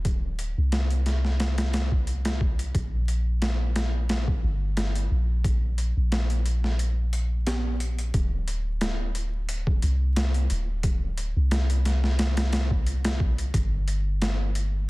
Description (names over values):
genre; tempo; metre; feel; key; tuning
trip hop; 89 BPM; 4/4; swing 54% on 16ths; unclear; A4 = 440 Hz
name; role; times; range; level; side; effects
soft 808-style bass; bass; 0.0-14.9 s; D1 to C2; -25 LUFS; equal; none
boom bap sampler-style drum kit; drums; 0.0-14.7 s; hi-hat, kick drum, snare drum; -28 LUFS; equal; overdrive
room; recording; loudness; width
little or no reverb; dense, heavily limited modern master, vinyl crackle; -23 LUFS; side -21 dB against mid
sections
0.0-8.1 A section; 8.1-14.9 B section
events
break 6.8-8.1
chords
none